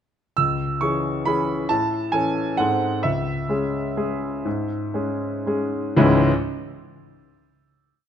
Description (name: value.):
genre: classical, piano waltz.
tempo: 114-140 BPM.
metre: 3/4.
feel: rubato.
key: C# minor.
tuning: A4 = 441 Hz.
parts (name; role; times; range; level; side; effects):
clear concert grand piano; solo; 0.4-6.3 s; C#2 to E6; -20 LUFS; equal; none.
room: moderate scoring stage reverb, RT60 1.6 s.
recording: close, detailed microphones.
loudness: -20 LUFS.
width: side -9 dB against mid.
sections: 0.4-6.0 A section; 6.0-7.4 final chord.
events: slowing down 2.4-6.0.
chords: 0.4 C#m; 1.7 A; 2.6 G#7b9; 3.0 C#m.